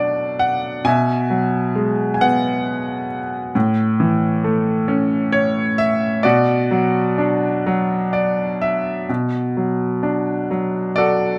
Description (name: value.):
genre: classical, lyrical solo piano.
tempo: 44 BPM (dotted quarters).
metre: 6/8.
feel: uneven beats, rubato.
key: B dorian.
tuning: A4 = 441 Hz.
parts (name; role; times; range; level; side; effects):
bright baby grand piano; solo; 0.0-11.4 s; A2 to G#5; -19 LUFS; equal; none.
room: light reverb.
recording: close, detailed microphones.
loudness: -19 LUFS.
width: mono.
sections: 0.0-9.1 A section; 9.1-11.4 B section.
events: grand piano fill 7.7-9.1.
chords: 0.0 Bm7; 0.9 Eadd9/B; 3.6 A; 6.2 Bm; 9.1 Bm7.